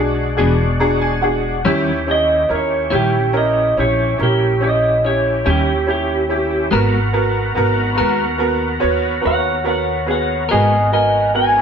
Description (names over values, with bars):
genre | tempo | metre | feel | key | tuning
slow blues | 47 BPM (dotted quarters) | 12/8 | straight | G# minor | A4 = 439 Hz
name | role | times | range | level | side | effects
bright upright piano | accompaniment | 0.0-11.6 s | B3 to A#5 | -19 LUFS | right 1 dB | none
overdriven tonewheel organ | sustained chords | 0.0-11.6 s | G#3 to A#4 | -24 LUFS | left 2 dB | slow rotary speaker, chorus vibrato
upright bass | bass | 0.0-11.6 s | E1 to D#2 | -21 LUFS | equal | none
clean electric guitar | accompaniment | 0.4-10.8 s | D#3 to A#4 | -21 LUFS | left 3 dB | tremolo
clean lap steel guitar | melody | 2.1-11.6 s | G4 to G#5 | -17 LUFS | right 1 dB | none
room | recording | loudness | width
moderate stone room reverb, RT60 1.2 s | band playing live in one room | -14 LUFS | side -7 dB against mid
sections
0.0-11.6 A section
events
upright piano fill 0.4-1.7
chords
0.0 E7; 1.7 D#7b9; 6.7 G#m9